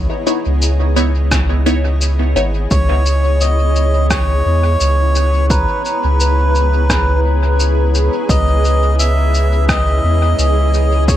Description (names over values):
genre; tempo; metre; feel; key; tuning
ambient dub; 86 BPM; 4/4; swing 55% on 16ths; C# minor; A4 = 440 Hz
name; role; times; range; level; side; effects
granular cloud pad; sustained chords; 0.0-11.2 s; B3 to G#5; -22 LUFS; equal; built-in reverb
soft dub sub bass; bass; 0.0-11.2 s; G#1 to E2; -14 LUFS; equal; none
filtered dub chord stab; stabs; 0.3-2.5 s; B3 to C#5; -20 LUFS; left 1 dB; phaser, dub echo
electronic shaker and rim click; drums; 0.3-11.2 s; none; -22 LUFS; left 1 dB; dub echo
electronic kick drum; drums; 1.3-11.2 s; none; -18 LUFS; equal; overdrive
melodica; melody; 2.7-11.2 s; B4 to E5; -19 LUFS; equal; dub echo
vibraphone with medium hard mallets; arpeggios; 5.5-11.2 s; B4 to A#5; -23 LUFS; left 2 dB; dub echo
room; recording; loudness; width
light reverb, digital ambience; none; -12 LUFS; side -12 dB against mid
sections
0.0-11.2 A section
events
none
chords
0.0 C#m9